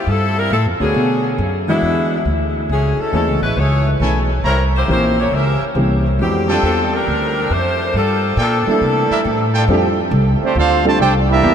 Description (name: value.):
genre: jazz, big band swing.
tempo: 137 BPM.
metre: 4/4.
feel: swing 68% on 8ths.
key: F major.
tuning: A4 = 442 Hz.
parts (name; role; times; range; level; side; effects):
bright saxophone section; melody; 0.0-9.5 s; D3 to E5; -19 LUFS; left 1 dB; diffuse ambient delay.
upright bass; bass; 0.1-11.5 s; A1 to C3; -18 LUFS; equal; none.
dark baby grand piano; accompaniment; 0.8-11.0 s; D3 to Db5; -21 LUFS; right 1 dB; none.
clear trumpet section; stabs; 4.0-9.6 s; E4 to Bb5; -24 LUFS; equal; none.
dark trombone section; second line; 8.7-11.5 s; Bb2 to G4; -21 LUFS; right 5 dB; none.
mellow trombone section; sustained chords; 9.7-11.5 s; E3 to G4; -24 LUFS; left 1 dB; none.
clear trumpet section; melody; 10.4-11.5 s; A3 to A5; -16 LUFS; right 3 dB; diffuse ambient delay.
room: wet huge ambient reverb, RT60 8.0 s.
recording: dreamy mix soaked in reverb.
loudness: -14 LUFS.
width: side -8 dB against mid.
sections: 0.0-9.7 A section; 9.7-11.5 B section.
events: none.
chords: 0.0 Dm11; 0.9 Bm9; 1.8 E7; 2.7 Amaj7; 4.4 C7b9; 6.2 F69; 7.9 Gm7; 8.8 C13; 9.7 F69.